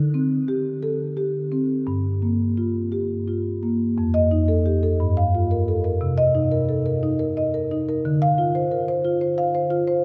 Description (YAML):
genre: classical, contemporary piece for solo marimba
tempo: 58 BPM (dotted quarters)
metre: 6/8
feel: rubato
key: unclear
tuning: A4 = 440 Hz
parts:
  - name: marimba with soft mallets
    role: solo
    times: 0.0-10.0 s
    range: F2 to F5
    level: -22 LUFS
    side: equal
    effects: none
room: wet cathedral reverb, RT60 5.9 s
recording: recorded in a church or concert hall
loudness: -22 LUFS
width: mono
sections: 0.0-4.0 A section; 4.0-10.0 B section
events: none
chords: 0.0 D7sus4; 1.9 Gm7; 4.0 F9; 5.0 Gm7; 6.0 Cm7; 8.0 Dm7